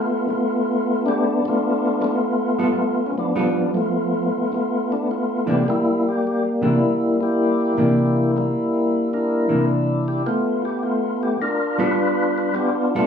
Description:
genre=jazz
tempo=104 BPM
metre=4/4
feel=swing 67% on 8ths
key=G mixolydian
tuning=A4 = 440 Hz
part: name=percussive tonewheel organ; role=melody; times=0.0-13.1 s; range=F3 to B4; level=-19 LUFS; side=left 1 dB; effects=slow rotary speaker
part: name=hollow-body jazz guitar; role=accompaniment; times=0.0-13.1 s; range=C3 to A4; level=-22 LUFS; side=right 1 dB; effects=none
room=moderate large studio reverb, RT60 0.9 s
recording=band playing live in one room, studio reverb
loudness=-18 LUFS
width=side -7 dB against mid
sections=0.0-13.1 A section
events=none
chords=0.0 G9; 5.6 C9; 10.3 G9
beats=0.46 | 1.04 1.61 2.19 2.76 | 3.34 3.92 4.49 5.07 | 5.65 6.22 6.80 7.38 | 7.95 8.53 9.10 9.68 | 10.25 10.83 11.40 11.98 | 12.55

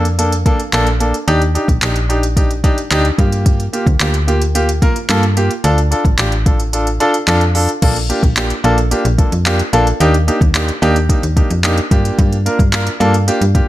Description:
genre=dance-pop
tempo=110 BPM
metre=4/4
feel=straight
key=Bb major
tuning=A4 = 440 Hz
part: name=clear grand piano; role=accompaniment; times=0.0-13.7 s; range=Bb3 to Bb4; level=-16 LUFS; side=equal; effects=sidechain pumping
part: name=slap-like FM bass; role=bass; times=0.0-13.6 s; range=A1 to G2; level=-15 LUFS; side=equal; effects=sidechain pumping
part: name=smooth R&B drum kit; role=drums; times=0.1-13.7 s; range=crash cymbal, handclaps, hi-hat, kick drum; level=-16 LUFS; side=equal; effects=none
room=little or no reverb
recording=none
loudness=-12 LUFS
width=side -15 dB against mid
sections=0.0-7.8 A section; 7.8-13.7 B section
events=kick muted 6.7-7.8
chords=0.0 Bbmaj7; 1.3 Ebmaj7; 3.2 Gm7; 5.6 Dm; 7.8 Bbmaj7; 10.0 Ebmaj7; 11.9 Gm7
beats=0.19 0.73 | 1.28 1.82 2.37 2.91 | 3.46 4.00 4.55 5.10 | 5.64 6.19 6.73 7.28 | 7.82 8.37 8.91 9.46 | 10.01 10.55 11.10 11.64 | 12.19 12.73 13.28

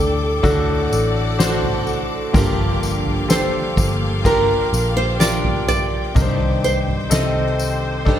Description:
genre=pop ballad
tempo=63 BPM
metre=4/4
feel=straight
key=G minor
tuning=A4 = 439 Hz
part: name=nylon-string guitar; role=melody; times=0.0-8.0 s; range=A4 to Eb5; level=-22 LUFS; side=right 2 dB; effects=lush chorus
part: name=warm concert grand piano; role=accompaniment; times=0.0-8.2 s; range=G2 to C5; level=-24 LUFS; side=left 4 dB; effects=none
part: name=bright symphonic string section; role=sustained chords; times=0.0-8.2 s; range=Bb3 to D6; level=-27 LUFS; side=left 3 dB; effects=none
part: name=picked plugged-in steel-string acoustic guitar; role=arpeggios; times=0.0-8.2 s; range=G2 to A4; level=-26 LUFS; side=right 4 dB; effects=ensemble chorus, digital delay
part: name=vintage muted fingered electric bass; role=bass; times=0.0-8.2 s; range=G1 to D2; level=-23 LUFS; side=equal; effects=none
part: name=soft-mallet drum kit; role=drums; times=0.4-8.2 s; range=kick drum, snare drum, toms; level=-21 LUFS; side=equal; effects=none
part: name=tambourine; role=percussion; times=0.5-7.8 s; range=none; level=-30 LUFS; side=left 6 dB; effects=none
room=moderate plate reverb, RT60 1.9 s, small room ambience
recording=bright 1980s-style digital production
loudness=-16 LUFS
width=side -10 dB against mid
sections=0.0-8.2 A section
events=none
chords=0.4 D; 2.3 Gm7; 6.2 Cmadd9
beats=0.44 1.39 | 2.35 3.30 4.25 5.20 | 6.15 7.11 8.06

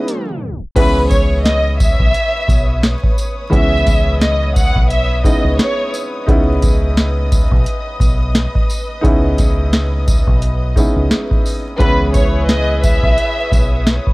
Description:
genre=hip hop, boom-bap hip-hop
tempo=87 BPM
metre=4/4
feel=swing 57% on 16ths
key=C# minor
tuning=A4 = 442 Hz
part: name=warm upright piano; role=accompaniment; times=0.0-14.1 s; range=E3 to E4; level=-21 LUFS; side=equal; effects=high-pass filter, low-pass filter
part: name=warm studio string section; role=sustained chords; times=0.0-14.1 s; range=B4 to D#6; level=-28 LUFS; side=left 1 dB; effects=high-pass filter, low-pass filter
part: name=dark saxophone section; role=stabs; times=0.0-0.4, 11.8-14.1 s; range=E4 to B4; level=-25 LUFS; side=equal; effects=high-pass filter, low-pass filter, analog delay
part: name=booming analog drum machine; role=drums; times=0.1-14.1 s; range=crash cymbal, hi-hat, kick drum, snare drum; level=-15 LUFS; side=equal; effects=vintage 12-bit sampler grit
part: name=tambourine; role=percussion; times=0.4-13.7 s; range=none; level=-32 LUFS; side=equal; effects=none
part: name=warm studio violin section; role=melody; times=0.8-5.9, 11.8-13.8 s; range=B4 to F#5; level=-18 LUFS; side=equal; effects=high-pass filter, low-pass filter, analog delay
part: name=deep dub fingered electric bass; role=bass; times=0.8-14.0 s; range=B1 to C#2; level=-17 LUFS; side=equal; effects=none
room=small room ambience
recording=dry, gritty hardware recording, vinyl crackle, tape stop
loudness=-12 LUFS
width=side -22 dB against mid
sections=0.8-14.1 A section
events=break 0.0-0.8; drum fill 0.0-0.8; tape stop 0.1-0.8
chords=0.0 C#m9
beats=0.07 | 0.76 1.45 2.14 2.83 | 3.52 4.21 4.90 5.59 | 6.28 6.97 7.66 8.35 | 9.04 9.73 10.42 11.11 | 11.80 12.49 13.18 13.87

